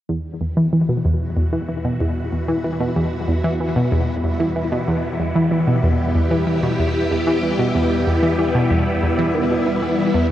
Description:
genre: ambient, sequencer-driven space music.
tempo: 94 BPM.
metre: 4/4.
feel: straight.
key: E minor.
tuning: A4 = 441 Hz.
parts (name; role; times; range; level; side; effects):
phased string machine; sustained chords; 0.1-10.3 s; G3 to G4; -23 LUFS; equal; ensemble chorus, phaser.
analog pluck; riff; 0.1-10.3 s; E2 to E3; -18 LUFS; equal; chorus, phaser, ping-pong delay.
wind-like tuned noise texture; texture; 1.4-10.3 s; E4 to E5; -30 LUFS; right 1 dB; built-in reverb.
room: wet huge ambient reverb, RT60 7.3 s.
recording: worn, warbling old tape, cassette tape, warbly pitch drift.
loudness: -17 LUFS.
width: side -12 dB against mid.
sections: 0.1-10.3 A section.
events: fade-in on string machine 0.1-10.3; fade-in on synth texture 0.1-10.3; filter sweep on synth arpeggio sound 0.1-10.3.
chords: 0.1 Emadd9.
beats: | 0.09 0.73 1.37 2.00 | 2.64 3.28 3.92 4.56 | 5.20 5.83 6.47 7.11 | 7.75 8.39 9.03 9.66 | 10.30.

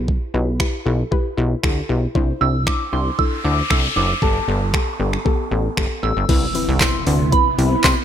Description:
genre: dance-pop.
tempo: 116 BPM.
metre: 4/4.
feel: straight.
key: unclear.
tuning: A4 = 441 Hz.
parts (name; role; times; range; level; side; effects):
soft round pluck; accompaniment; 0.0-8.0 s; B3 to C5; -25 LUFS; left 7 dB; chorus.
plucky analog bass; bass; 0.0-7.9 s; F#1 to C3; -20 LUFS; right 1 dB; sidechain pumping.
smooth R&B drum kit; drums; 0.1-8.0 s; crash cymbal, finger snaps, handclaps, hi-hat, kick drum, snare drum; -19 LUFS; right 1 dB; none.
noise sweep and impact; sound effects; 2.9-8.0 s; none; -28 LUFS; left 1 dB; none.
soft synth bell; melody; 2.4-8.0 s; A5 to E6; -23 LUFS; right 3 dB; chorus, phaser.
string machine, violas; sustained chords; 6.3-8.0 s; C3 to E4; -25 LUFS; right 1 dB; phaser, ensemble chorus, sidechain pumping.
tambourine; percussion; 6.8-8.0 s; none; -32 LUFS; right 12 dB; none.
room: light reverb.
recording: bright 1980s-style digital production.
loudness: -16 LUFS.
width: side -9 dB against mid.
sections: 0.0-6.3 A section; 6.3-8.0 B section.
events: noise sweep 2.9-6.3; impact 6.3-8.0.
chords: 0.0 Em/B; 2.2 Cadd9; 4.2 Gadd9; 6.3 Cmaj7.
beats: | 0.08 0.60 1.12 1.64 | 2.15 2.67 3.19 3.70 | 4.22 4.74 5.26 5.77 | 6.29 6.81 7.33 7.84.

